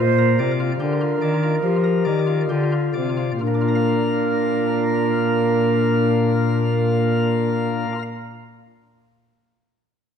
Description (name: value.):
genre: classical, baroque-style sonata movement with continuo.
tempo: 65-76 BPM.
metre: 4/4.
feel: rubato.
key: Bb major.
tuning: A4 = 439 Hz.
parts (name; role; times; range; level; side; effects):
mellow hollow tenor recorder; melody; 0.0-7.9 s; D4 to G4; -25 LUFS; left 15 dB; none.
mellow concert flute; second line; 0.0-7.9 s; Bb4 to C5; -23 LUFS; right 6 dB; none.
chamber organ, sparkling flutes; accompaniment; 0.0-8.0 s; Bb2 to F5; -23 LUFS; left 4 dB; none.
dark cello; bass; 0.0-7.9 s; Bb2 to F3; -23 LUFS; right 1 dB; none.
room: moderate concert hall reverb, RT60 1.8 s.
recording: close, detailed microphones.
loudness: -18 LUFS.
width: side -7 dB against mid.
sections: 0.0-3.4 A section; 3.4-7.1 B section.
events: slowing down 0.0-3.4.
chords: 0.0 Bb.